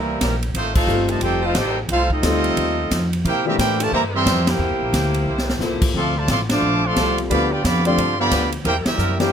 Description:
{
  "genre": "jazz, big band swing",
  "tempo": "178 BPM",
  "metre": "4/4",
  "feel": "swing 63% on 8ths",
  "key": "C major",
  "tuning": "A4 = 437 Hz",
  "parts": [
    { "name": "clear trumpet section", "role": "melody", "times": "0.0-9.3 s", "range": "G3 to D6", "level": "-22 LUFS", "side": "right 1 dB", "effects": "none" },
    { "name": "bright trombone section", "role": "second line", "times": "0.0-9.3 s", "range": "C3 to G4", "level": "-24 LUFS", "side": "right 1 dB", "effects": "none" },
    { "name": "upright bass", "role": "bass", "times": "0.0-9.3 s", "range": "F1 to C3", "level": "-23 LUFS", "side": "equal", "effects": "none" },
    { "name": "warm saxophone section", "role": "sustained chords", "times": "0.2-1.9, 3.9-9.1 s", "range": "G3 to C5", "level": "-28 LUFS", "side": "equal", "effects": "none" },
    { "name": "swinging big-band drum kit", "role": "drums", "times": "0.2-9.3 s", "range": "crash cymbal, hi-hat, kick drum, ride cymbal, snare drum", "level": "-24 LUFS", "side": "equal", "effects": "none" },
    { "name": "warm concert grand piano", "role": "accompaniment", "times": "0.9-9.3 s", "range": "E3 to D5", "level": "-24 LUFS", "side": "left 4 dB", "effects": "none" }
  ],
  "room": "light reverb",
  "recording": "none",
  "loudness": "-17 LUFS",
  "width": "side -8 dB against mid",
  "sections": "0.0-9.3 A section",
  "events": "band accent 0.7, 4.4, 6.5, 8.8; drum fill 5.3-5.6",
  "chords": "0.0 C7; 0.5 F7; 3.2 C7; 6.0 Dm7; 7.3 G7; 8.7 C7"
}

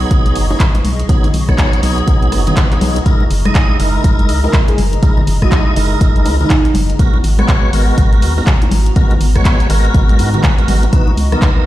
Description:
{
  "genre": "deep house",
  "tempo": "122 BPM",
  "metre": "4/4",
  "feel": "swing 61% on 16ths",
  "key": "G# minor",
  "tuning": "A4 = 440 Hz",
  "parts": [
    { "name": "hollow soft pad", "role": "sustained chords", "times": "0.0-11.7 s", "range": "B3 to C#6", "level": "-27 LUFS", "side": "left 1 dB", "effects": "ensemble chorus, sidechain pumping" },
    { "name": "tonewheel organ", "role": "stabs", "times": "0.0-11.6 s", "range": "E3 to D#5", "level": "-19 LUFS", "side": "right 1 dB", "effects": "chorus vibrato, slow rotary speaker, sidechain pumping, dub echo" },
    { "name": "organ-like FM bass", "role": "bass", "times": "0.0-11.4 s", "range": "F#1 to G#2", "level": "-14 LUFS", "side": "equal", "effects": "tube saturation, sidechain pumping" },
    { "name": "electronic kick drum", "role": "drums", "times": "0.1-11.5 s", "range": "none", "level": "-11 LUFS", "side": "equal", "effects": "none" },
    { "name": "punchy analog drum machine", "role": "drums", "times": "0.1-11.5 s", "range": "handclaps, hi-hat, rim click", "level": "-23 LUFS", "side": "equal", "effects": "none" },
    { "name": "congas and bongos", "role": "percussion", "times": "0.3-11.4 s", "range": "none", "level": "-22 LUFS", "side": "left 2 dB", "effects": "sidechain pumping on perc" },
    { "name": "breathy flute-like synth lead", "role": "melody", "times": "4.4-6.7 s", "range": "D#4 to A#4", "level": "-20 LUFS", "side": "right 3 dB", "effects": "wide subtle chorus, vintage 12-bit sampler grit, ping-pong delay" }
  ],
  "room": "digital ambience",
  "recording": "played on a big sound system in a bare room, stone room reverb",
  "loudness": "-10 LUFS",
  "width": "side -15 dB against mid",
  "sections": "0.0-11.7 A section",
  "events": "none",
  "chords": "0.0 B6; 3.1 F#13; 7.0 G#m9; 10.9 C#m11"
}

